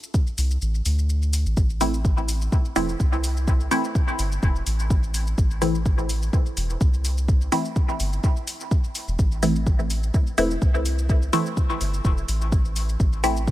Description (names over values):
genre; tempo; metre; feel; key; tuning
dub techno; 126 BPM; 4/4; swing 54% on 16ths; A minor; A4 = 439 Hz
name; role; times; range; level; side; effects
electronic shaker and hi-hat; drums; 0.0-13.5 s; none; -33 LUFS; left 1 dB; studio reverb
electronic kick drum; drums; 0.1-13.5 s; none; -20 LUFS; equal; studio reverb
soft dub sub bass; bass; 0.4-13.5 s; E1 to D2; -24 LUFS; equal; tube saturation, sidechain pumping
filtered dub chord stab; stabs; 1.8-13.4 s; E3 to E4; -26 LUFS; equal; phaser, sidechain pumping, dub echo
room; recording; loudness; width
little or no reverb; none; -20 LUFS; side -14 dB against mid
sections
0.0-1.6 A section; 1.6-13.5 A section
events
kick drops out 0.6-1.6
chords
0.0 D5; 1.6 Am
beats
0.14 0.62 1.09 | 1.57 2.05 2.52 3.00 | 3.47 3.95 4.43 4.90 | 5.38 5.86 6.33 6.81 | 7.28 7.76 8.24 8.71 | 9.19 9.66 10.14 10.62 | 11.09 11.57 12.05 12.52 | 13.00 13.47